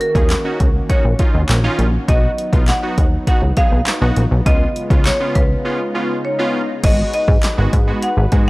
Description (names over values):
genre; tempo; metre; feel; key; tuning
dance-pop; 101 BPM; 4/4; straight; unclear; A4 = 439 Hz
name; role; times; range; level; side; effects
marimba with medium hard mallets; melody; 0.0-8.5 s; Bb4 to F#5; -22 LUFS; equal; analog delay
warm analog pad; sustained chords; 0.0-8.5 s; Db3 to Cb5; -27 LUFS; left 1 dB; chorus, sidechain pumping
punchy analog drum machine; drums; 0.0-8.5 s; crash cymbal, handclaps, hi-hat, kick drum, snare drum; -16 LUFS; equal; none
warm analog keys; accompaniment; 0.2-8.5 s; Ab3 to Ab4; -24 LUFS; right 1 dB; chorus, sidechain pumping
plucky analog bass; bass; 0.2-8.5 s; Ab1 to Ab2; -17 LUFS; equal; sidechain pumping
swell; sound effects; 5.5-6.8 s; none; -31 LUFS; right 1 dB; none
room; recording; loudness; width
little or no reverb; dry, gritty hardware recording, transformer saturation; -14 LUFS; side -21 dB against mid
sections
0.0-6.8 A section; 6.8-8.5 B section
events
swell 5.5-6.8; break 5.6-6.8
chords
0.0 Ebm7; 2.1 B; 4.5 Db7; 6.8 Abm7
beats
0.30 0.90 1.49 | 2.08 2.68 3.27 3.87 | 4.46 5.05 5.65 6.24 | 6.84 7.43 8.03